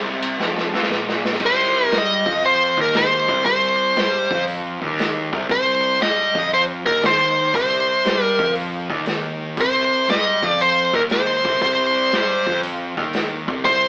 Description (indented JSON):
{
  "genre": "blues rock power trio and southern rock",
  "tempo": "118 BPM",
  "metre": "4/4",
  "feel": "swing 67% on 8ths",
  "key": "C minor",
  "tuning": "A4 = 440 Hz",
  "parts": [
    { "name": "fuzz guitar", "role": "riff", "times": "0.0-13.9 s", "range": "F2 to G3", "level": "-31 LUFS", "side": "equal", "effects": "distortion" },
    { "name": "fuzz picked electric bass", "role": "bass", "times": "0.0-13.9 s", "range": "F1 to G2", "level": "-28 LUFS", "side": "equal", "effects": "overdrive" },
    { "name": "vintage drum kit", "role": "drums", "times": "0.2-13.8 s", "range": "crash cymbal, hi-hat, kick drum, ride cymbal, snare drum", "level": "-27 LUFS", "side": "equal", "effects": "none" },
    { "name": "bluesy overdriven lead guitar", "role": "melody", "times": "1.5-13.9 s", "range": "Bb4 to Eb5", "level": "-19 LUFS", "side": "equal", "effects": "distortion" }
  ],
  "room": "light reverb",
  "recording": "band playing live in one room, AM radio sound",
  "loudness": "-19 LUFS",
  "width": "mono",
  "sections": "0.0-1.4 A section; 1.4-13.9 B section",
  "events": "drum fill 0.4-1.4",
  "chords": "0.0 Fsus4; 1.4 Cm",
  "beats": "0.40 0.91 | 1.42 1.93 2.44 2.95 | 3.46 3.97 4.48 4.99 | 5.50 6.01 6.52 7.03 | 7.54 8.05 8.56 9.07 | 9.58 10.09 10.60 11.11 | 11.62 12.13 12.63 13.14 | 13.65"
}